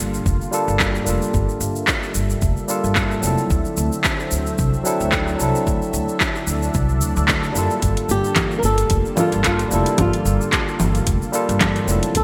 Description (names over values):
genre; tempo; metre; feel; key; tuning
sunset chillout; 111 BPM; 4/4; swing 56% on 16ths; G dorian; A4 = 439 Hz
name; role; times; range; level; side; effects
barky tine electric piano; accompaniment; 0.0-12.2 s; F#3 to A4; -26 LUFS; equal; overdrive, digital delay
lush unison pad; sustained chords; 0.0-12.2 s; D3 to E5; -31 LUFS; equal; chorus, phaser
upright bass; bass; 0.0-12.2 s; F1 to F#2; -24 LUFS; equal; none
deep house drum kit; drums; 0.1-12.2 s; congas, handclaps, hi-hat, shaker; -25 LUFS; equal; overdrive
electronic kick drum; drums; 0.3-12.2 s; none; -26 LUFS; equal; none
flamenco guitar; melody; 8.1-12.2 s; E4 to Bb4; -25 LUFS; equal; digital delay
room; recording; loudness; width
moderate lush hall reverb, RT60 1.7 s; bright 1980s-style digital production; -19 LUFS; mono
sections
0.0-12.2 A section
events
none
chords
0.0 Gm9; 3.5 D9; 7.8 Gm9